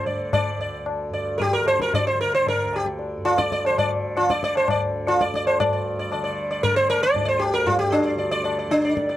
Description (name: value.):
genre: indian classical, Hindustani.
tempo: 115 BPM.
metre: 5/4.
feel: straight.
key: D raga malkauns.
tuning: A4 = 439 Hz.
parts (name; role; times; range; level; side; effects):
sitar; melody; 0.0-9.2 s; D4 to D5; -21 LUFS; right 1 dB; none.
tanpura; drone; 0.0-9.2 s; D2 to D3; -32 LUFS; right 2 dB; none.
tabla; percussion; 0.1-9.2 s; none; -27 LUFS; left 4 dB; none.
room: little or no reverb.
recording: dry, close 1970s-style studio recording.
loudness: -20 LUFS.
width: side -13 dB against mid.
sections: 0.0-5.6 A section; 5.6-9.2 B section.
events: speeding up 0.0-9.2.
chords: none.